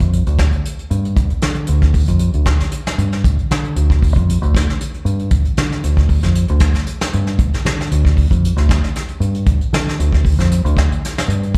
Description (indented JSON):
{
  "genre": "afrobeat",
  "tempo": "116 BPM",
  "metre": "4/4",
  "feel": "straight",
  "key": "D minor",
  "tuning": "A4 = 442 Hz",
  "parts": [
    { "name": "deep dub fingered electric bass", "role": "bass", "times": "0.0-11.6 s", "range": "D2 to D3", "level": "-18 LUFS", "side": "equal", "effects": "none" },
    { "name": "soft brush drum kit", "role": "drums", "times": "0.0-11.6 s", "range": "hi-hat, kick drum, snare drum", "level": "-19 LUFS", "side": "equal", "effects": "none" }
  ],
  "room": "little or no reverb",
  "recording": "live gig heard through the venue's PA, club reverb",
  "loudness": "-16 LUFS",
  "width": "mono",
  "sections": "0.0-11.6 A section",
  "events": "none",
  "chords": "none",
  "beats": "0.14 0.66 | 1.17 1.69 2.21 2.73 | 3.25 3.77 4.29 4.80 | 5.32 5.84 6.36 6.88 | 7.40 7.91 8.43 8.95 | 9.47 9.99 10.50 11.02 | 11.54"
}